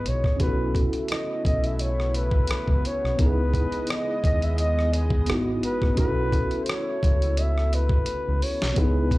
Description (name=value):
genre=R&B, neo-soul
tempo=86 BPM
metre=4/4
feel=swing 54% on 16ths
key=unclear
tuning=A4 = 442 Hz
part: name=breathy flugelhorn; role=melody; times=0.0-9.2 s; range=G#4 to E5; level=-29 LUFS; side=equal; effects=slapback echo
part: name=mellow tine electric piano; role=accompaniment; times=0.0-9.2 s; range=B3 to A4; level=-30 LUFS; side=equal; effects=medium stereo tremolo
part: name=lush unison pad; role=sustained chords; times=0.0-9.2 s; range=C#3 to D#5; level=-36 LUFS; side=equal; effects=chorus
part: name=deep dub fingered electric bass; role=bass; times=0.1-9.2 s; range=G#1 to D#2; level=-25 LUFS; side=equal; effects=none
part: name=boom bap sampler-style drum kit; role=drums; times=0.1-9.2 s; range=hi-hat, kick drum, rim click, snare drum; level=-25 LUFS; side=equal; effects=none
room=light reverb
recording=live gig heard through the venue's PA, club ambience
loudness=-21 LUFS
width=side -19 dB against mid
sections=0.0-9.2 A section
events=drum fill 8.1-8.8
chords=0.4 B9sus4; 3.2 C#m9; 6.0 B9sus4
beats=| 0.40 1.09 1.79 2.49 | 3.19 3.89 4.58 5.28 | 5.98 6.68 7.37 8.07 | 8.77